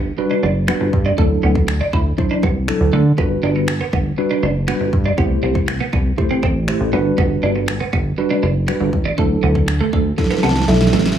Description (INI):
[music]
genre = dance-pop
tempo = 120 BPM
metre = 4/4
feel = straight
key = G major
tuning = A4 = 441 Hz
[part]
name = chorused synth bass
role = bass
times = 0.0-11.2 s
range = F#1 to D3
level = -18 LUFS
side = equal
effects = sidechain pumping
[part]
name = mellow tine electric piano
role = accompaniment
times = 0.2-11.1 s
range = F#3 to A5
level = -20 LUFS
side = equal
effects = medium stereo tremolo, sidechain pumping
[part]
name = twelve-string electric guitar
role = riff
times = 0.2-11.0 s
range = A3 to E4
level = -23 LUFS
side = right 5 dB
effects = analog chorus
[part]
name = pop drum kit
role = drums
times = 0.7-11.2 s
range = finger snaps, kick drum, snare drum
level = -21 LUFS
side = equal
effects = none
[sound]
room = light reverb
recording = small room ambience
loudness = -15 LUFS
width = side -9 dB against mid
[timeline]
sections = 0.0-11.2 A section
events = drum fill 10.2-11.2; tine electric piano fill 10.2-11.2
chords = 0.0 Gmaj7; 1.2 Dadd9; 3.2 Gmaj7; 5.2 C6; 6.9 Gmaj7; 9.2 Dadd9